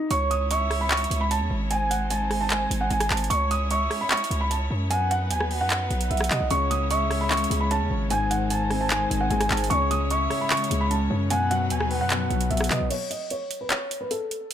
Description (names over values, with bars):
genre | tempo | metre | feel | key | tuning
hip hop, trap | 150 BPM | 4/4 | half-time | C# minor | A4 = 440 Hz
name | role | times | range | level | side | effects
felt-muted upright piano | melody | 0.0-14.5 s | A4 to D#6 | -27 LUFS | right 1 dB | low-pass filter, tape echo
gliding portamento lead | second line | 0.1-12.9 s | C#5 to A5 | -32 LUFS | right 5 dB | chorus, tape echo
rich chamber string section | sustained chords | 0.1-12.9 s | F#3 to C#5 | -32 LUFS | equal | none
hard-hitting 808-style bass | bass | 0.1-12.9 s | G#1 to B2 | -27 LUFS | equal | none
trap drum kit | drums | 0.1-14.5 s | crash cymbal, handclaps, hi-hat, rim click | -28 LUFS | right 1 dB | none
dark baby grand piano | accompaniment | 6.5-12.9 s | G#2 to C#5 | -29 LUFS | left 6 dB | none
room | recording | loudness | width
light reverb | none | -22 LUFS | side -9 dB against mid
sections
0.1-12.9 A section; 12.9-14.5 B section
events
break 12.9-14.5; filter sweep on felt piano 12.9-14.5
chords
0.1 C#m; 1.7 G#; 3.3 C#m; 4.9 B; 6.5 C#m; 8.1 G#; 9.7 C#m; 11.3 B; 12.9 N.C.